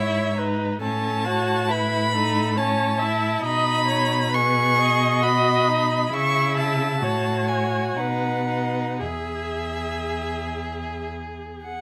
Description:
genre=classical, slow romantic movement for string quartet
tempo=56-70 BPM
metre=3/4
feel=rubato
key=E major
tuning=A4 = 440 Hz
part: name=rich violin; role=melody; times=0.0-11.8 s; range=E5 to C#6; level=-27 LUFS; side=equal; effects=none
part: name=rich violin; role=second line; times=0.0-11.8 s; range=C#4 to G#4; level=-30 LUFS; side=equal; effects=none
part: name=warm viola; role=accompaniment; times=0.0-11.6 s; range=G#4 to E5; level=-29 LUFS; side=equal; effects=none
part: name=rich cello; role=bass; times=0.0-11.8 s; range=E2 to C#3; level=-28 LUFS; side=equal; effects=none
room=light reverb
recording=close, detailed microphones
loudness=-23 LUFS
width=mono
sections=0.0-11.8 A section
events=none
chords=0.0 E/G#; 0.8 A; 3.4 B; 6.1 C#m; 7.0 F#m/A; 8.0 B; 9.0 E

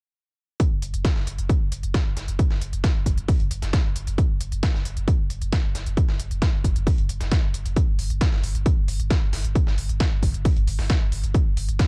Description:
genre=driving peak-time techno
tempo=134 BPM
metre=4/4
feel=straight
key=unclear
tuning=A4 = 445 Hz
part: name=dusty soul sampler-style drum kit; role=drums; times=0.6-11.9 s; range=hi-hat, snare drum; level=-37 LUFS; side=equal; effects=overdrive, high-pass filter on hats, cassette tape, high-pass filter on snare
part: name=electronic hi-hat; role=drums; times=0.6-11.9 s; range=none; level=-40 LUFS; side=equal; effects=sidechain pumping on hats, cassette tape
part: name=electronic kick drum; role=drums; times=0.6-11.9 s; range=none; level=-23 LUFS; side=equal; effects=cassette tape
part: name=warm sub bass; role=bass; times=0.7-11.8 s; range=F#1 to G1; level=-30 LUFS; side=equal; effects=tube saturation, sidechain pumping, low-pass filter
room=digital ambience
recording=home recording on cassette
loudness=-23 LUFS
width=mono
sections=0.6-11.9 A section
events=none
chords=none

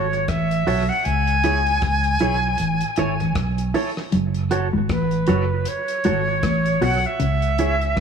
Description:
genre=roots reggae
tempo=78 BPM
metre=4/4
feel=swing 59% on 16ths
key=F# minor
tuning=A4 = 440 Hz
part: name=bright reedy concert flute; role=melody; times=0.0-8.0 s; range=B4 to G#5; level=-22 LUFS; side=right 1 dB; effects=tape echo
part: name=semi-hollow electric guitar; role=accompaniment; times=0.0-7.8 s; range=E4 to C#5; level=-26 LUFS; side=right 4 dB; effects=harmonic tremolo, tape echo
part: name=vintage muted fingered electric bass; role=bass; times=0.0-8.0 s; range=F#1 to C#2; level=-22 LUFS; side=equal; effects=none
part: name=damped 70s drum kit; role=drums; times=0.1-8.0 s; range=hi-hat, kick drum, rim click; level=-30 LUFS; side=left 1 dB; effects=dub echo
part: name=clean electric guitar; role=riff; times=4.1-8.0 s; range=F#2 to C#3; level=-25 LUFS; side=left 5 dB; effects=none
room=light reverb, small room ambience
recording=none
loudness=-18 LUFS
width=side -6 dB against mid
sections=0.0-8.0 A section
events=none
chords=0.0 F#m; 1.1 C#m; 2.6 A; 4.1 F#m; 7.2 C#m

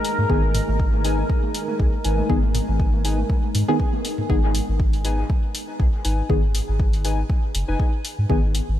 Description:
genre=dub techno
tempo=120 BPM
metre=4/4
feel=swing 55% on 16ths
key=G# minor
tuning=A4 = 440 Hz
part: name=deep dark ambient pad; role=sustained chords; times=0.0-4.3 s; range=G#3 to A#4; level=-28 LUFS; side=equal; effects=chorus, built-in reverb, sidechain pumping
part: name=electronic hi-hat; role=drums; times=0.0-8.7 s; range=none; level=-32 LUFS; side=left 2 dB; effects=overdrive
part: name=soft dub sub bass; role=bass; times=0.2-8.8 s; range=F#1 to G#2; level=-22 LUFS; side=equal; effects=sidechain pumping
part: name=electronic congas and toms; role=percussion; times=0.2-4.3 s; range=none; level=-33 LUFS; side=right 4 dB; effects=none
part: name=deep mellow chord stab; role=stabs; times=0.3-8.4 s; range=D#3 to G#4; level=-27 LUFS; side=left 1 dB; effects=chorus, phaser, sidechain pumping, dub echo
part: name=electronic kick drum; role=drums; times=0.3-8.4 s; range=none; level=-21 LUFS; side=equal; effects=overdrive
part: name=warbly lo-fi synth keys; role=riff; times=1.0-7.9 s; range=D#4 to G#5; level=-32 LUFS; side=left 3 dB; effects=chorus, sidechain pumping, dub echo
room=light reverb, digital ambience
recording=none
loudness=-19 LUFS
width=side -12 dB against mid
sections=0.0-4.3 A section; 4.3-8.8 A section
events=filter sweep on synth stab 0.0-4.3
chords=0.0 G#m

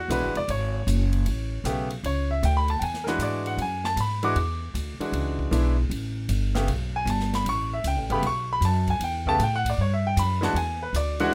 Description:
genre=jazz piano trio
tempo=155 BPM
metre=4/4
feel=swing 66% on 8ths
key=unclear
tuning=A4 = 440 Hz
part: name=clear grand piano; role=melody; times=0.0-11.3 s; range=C#3 to D6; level=-29 LUFS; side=equal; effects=none
part: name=upright bass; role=bass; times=0.0-11.3 s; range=E1 to A2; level=-28 LUFS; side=equal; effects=none
part: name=swinging big-band drum kit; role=drums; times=0.1-11.3 s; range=hi-hat, kick drum, ride cymbal, snare drum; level=-39 LUFS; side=equal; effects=none
room=little or no reverb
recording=rough home demo mix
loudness=-26 LUFS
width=mono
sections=0.0-11.3 A section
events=grand piano solo 0.0-11.3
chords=0.0 E9 (rootless); 1.3 A9; 2.8 E9; 5.9 A7sus2; 10.6 E9

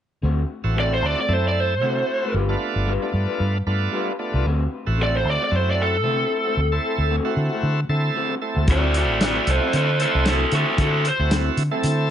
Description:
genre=straight-eighth soul blues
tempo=114 BPM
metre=4/4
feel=swing 56% on 16ths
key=D mixolydian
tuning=A4 = 440 Hz
part: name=electric guitar through a small old amp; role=stabs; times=0.2-11.9 s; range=D3 to B4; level=-30 LUFS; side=left 3 dB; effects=spring reverb, tape echo
part: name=vintage muted fingered electric bass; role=bass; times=0.2-12.1 s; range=G1 to D3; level=-22 LUFS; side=equal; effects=none
part: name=bright tonewheel organ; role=accompaniment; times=0.6-12.1 s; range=A3 to A4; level=-26 LUFS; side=right 3 dB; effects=overdrive, slow rotary speaker
part: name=lead guitar through a small cranked amp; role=melody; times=0.8-11.3 s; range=F#4 to D5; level=-22 LUFS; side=equal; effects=overdrive
part: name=warm soul drum kit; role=drums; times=8.7-12.0 s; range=hi-hat, kick drum, snare drum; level=-24 LUFS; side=equal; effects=none
room=light reverb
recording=nothing above 10.8 kHz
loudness=-19 LUFS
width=side -10 dB against mid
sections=0.2-8.7 A section; 8.7-12.1 B section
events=lead electric guitar solo 8.7-12.1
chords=0.2 D7; 2.3 G7; 4.5 D9

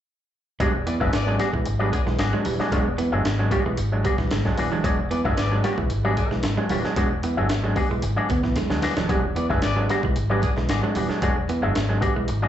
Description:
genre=funk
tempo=113 BPM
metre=4/4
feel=straight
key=E mixolydian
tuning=A4 = 439 Hz
part: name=electric guitar with an envelope filter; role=accompaniment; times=0.6-12.5 s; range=B3 to E5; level=-29 LUFS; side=left 6 dB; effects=plate reverb, slapback echo
part: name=clean electric guitar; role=riff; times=0.6-12.3 s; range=E3 to B3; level=-28 LUFS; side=right 5 dB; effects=slapback echo
part: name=overdriven clav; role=stabs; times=0.6-12.5 s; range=E3 to D4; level=-27 LUFS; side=right 2 dB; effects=plate reverb, slapback echo
part: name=vintage muted fingered electric bass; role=bass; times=0.6-12.5 s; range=D#1 to E2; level=-26 LUFS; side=equal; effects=none
part: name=breakbeat sampler-style drum kit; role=drums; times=0.6-12.4 s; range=hi-hat, kick drum, snare drum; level=-26 LUFS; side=left 1 dB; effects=none
part: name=congas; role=percussion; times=0.6-11.9 s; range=none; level=-36 LUFS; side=right 3 dB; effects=none
part: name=warm horn section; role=second line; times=0.9-10.5 s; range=B3 to D5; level=-30 LUFS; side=left 2 dB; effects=plate reverb, slapback echo
room=light reverb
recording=live gig heard through the venue's PA, club reverb, nothing above 8.0 kHz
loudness=-20 LUFS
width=side -10 dB against mid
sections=0.6-12.5 A section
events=drum fill 8.6-9.1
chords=0.6 E9

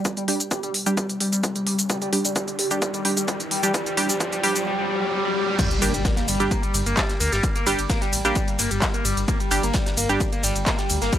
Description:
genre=driving peak-time techno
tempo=130 BPM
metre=4/4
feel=straight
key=G minor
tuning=A4 = 440 Hz
part: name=riser, swell and impact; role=sound effects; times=1.4-7.4 s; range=none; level=-31 LUFS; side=equal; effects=none
part: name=electronic kick drum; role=drums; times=0.1-11.2 s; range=none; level=-25 LUFS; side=equal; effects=high-pass filter on kick, high-pass filter on room
part: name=techno drum kit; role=drums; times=0.1-11.2 s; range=crash cymbal, handclaps, hi-hat, ride cymbal, shaker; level=-26 LUFS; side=equal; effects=sidechain pumping on hats, sidechain pumping on perc, sidechain pumping on cymbals
part: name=overdriven synth lead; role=riff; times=0.2-11.2 s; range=G3 to Bb3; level=-26 LUFS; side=equal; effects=phaser, sidechain pumping, tape echo
part: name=wavetable chord stab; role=stabs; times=0.3-10.2 s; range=G3 to G4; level=-26 LUFS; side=right 2 dB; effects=sidechain pumping, analog delay
part: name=tight metal drum kit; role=drums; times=5.6-11.2 s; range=ride cymbal, snare drum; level=-36 LUFS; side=left 1 dB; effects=none
part: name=dark detuned saw bass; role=bass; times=5.8-11.1 s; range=G1 to D2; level=-27 LUFS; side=left 1 dB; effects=sidechain pumping
room=digital ambience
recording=dry, gritty hardware recording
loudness=-20 LUFS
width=side -11 dB against mid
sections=0.0-5.6 A section; 5.6-11.2 B section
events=build-up 0.0-5.6; filter sweep on analog synth lead 0.0-5.6; filter sweep on synth stab 0.0-5.6; riser 1.4-5.6; swell 4.7-5.6; drop 5.6-11.2; impact 5.6-7.4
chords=0.0 G5

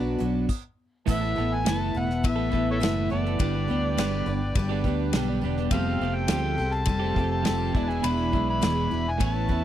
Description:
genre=folk rock and heartland rock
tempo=103 BPM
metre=4/4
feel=straight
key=unclear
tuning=A4 = 439 Hz
part: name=picked steel-string acoustic guitar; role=accompaniment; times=0.0-9.6 s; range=E2 to B4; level=-29 LUFS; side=left 4 dB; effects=none
part: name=accordion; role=sustained chords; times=0.0-9.6 s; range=A4 to E6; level=-39 LUFS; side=equal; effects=light tremolo tuning
part: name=twelve-string electric guitar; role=riff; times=0.0-9.6 s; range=E2 to A4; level=-30 LUFS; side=right 14 dB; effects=none
part: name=fingered electric bass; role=bass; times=0.0-9.6 s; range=E1 to E2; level=-29 LUFS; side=equal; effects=none
part: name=soft brush drum kit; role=drums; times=0.2-9.6 s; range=crash cymbal, hi-hat, kick drum, ride cymbal, snare drum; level=-28 LUFS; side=equal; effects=none
part: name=overdriven harmonica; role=melody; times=1.1-9.6 s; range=A4 to B5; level=-30 LUFS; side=left 2 dB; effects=none
room=little or no reverb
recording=dry, close 1970s-style studio recording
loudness=-23 LUFS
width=side -11 dB against mid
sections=0.0-1.1 A section; 1.1-9.6 B section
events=stop 0.5-1.1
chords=0.0 Bm; 1.1 Asus2; 3.4 G; 5.7 Fadd9; 7.8 E7

